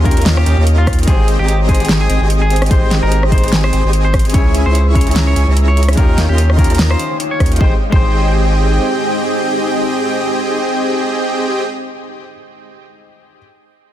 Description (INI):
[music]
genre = future bass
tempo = 147 BPM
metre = 4/4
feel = swing 56% on 16ths, half-time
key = Ab major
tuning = A4 = 440 Hz
[part]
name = clear grand piano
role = accompaniment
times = 0.0-13.4 s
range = Db3 to G5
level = -23 LUFS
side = left 6 dB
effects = sidechain pumping, ping-pong delay
[part]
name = ethereal airy pad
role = sustained chords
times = 0.0-11.6 s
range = Ab3 to Fb6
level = -25 LUFS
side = equal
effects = ensemble chorus, built-in reverb, tremolo, sidechain pumping
[part]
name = supersaw chords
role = riff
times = 0.0-11.6 s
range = C4 to Db6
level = -19 LUFS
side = right 1 dB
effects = cassette tape, sidechain pumping, ping-pong delay
[part]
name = saturated sub bass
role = bass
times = 0.0-8.8 s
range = Ab1 to Eb2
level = -13 LUFS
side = equal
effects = sidechain pumping
[part]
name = clean electric guitar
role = melody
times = 0.1-12.3 s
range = F4 to Db5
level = -23 LUFS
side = equal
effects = sidechain pumping, tape echo
[part]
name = electronic kick drum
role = drums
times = 0.1-8.0 s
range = none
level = -13 LUFS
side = equal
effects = none
[part]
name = pop drum kit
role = drums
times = 0.1-7.6 s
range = hi-hat, rim click, snare drum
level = -19 LUFS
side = equal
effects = soft clipping on snare
[sound]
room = digital ambience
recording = dense, heavily limited modern master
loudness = -11 LUFS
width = side -12 dB against mid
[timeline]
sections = 0.0-7.6 A section; 7.6-10.9 B section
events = drop 0.0-7.6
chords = 0.0 Eb9; 1.1 Abmaj7; 4.3 Dbm; 6.0 Eb9; 7.6 Abmaj7